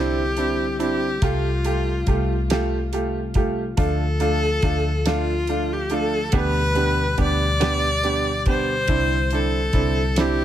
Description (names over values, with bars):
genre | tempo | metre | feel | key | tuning
six-eight pop ballad | 47 BPM (dotted quarters) | 6/8 | straight | C major | A4 = 440 Hz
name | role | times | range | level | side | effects
clear viola | melody | 0.0-10.4 s | F4 to D5 | -24 LUFS | left 2 dB | tape echo
clear upright piano | accompaniment | 0.0-10.4 s | A3 to G4 | -25 LUFS | right 4 dB | none
mellow tonewheel organ | sustained chords | 0.0-10.4 s | B2 to G4 | -30 LUFS | left 2 dB | slow rotary speaker
vintage muted fingered electric bass | bass | 0.0-10.4 s | C2 to D2 | -24 LUFS | equal | none
damped 70s drum kit | drums | 0.4-10.4 s | hi-hat, kick drum, snare drum | -24 LUFS | equal | none
room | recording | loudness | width
small room ambience | none | -19 LUFS | side -11 dB against mid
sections
0.0-10.4 A section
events
none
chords
0.0 Cadd9; 1.2 Fadd9/C; 3.8 Dm; 6.3 G/D; 8.9 Cadd9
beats
| 1.22 2.50 | 3.78 5.05 | 6.33 7.61 | 8.88 10.16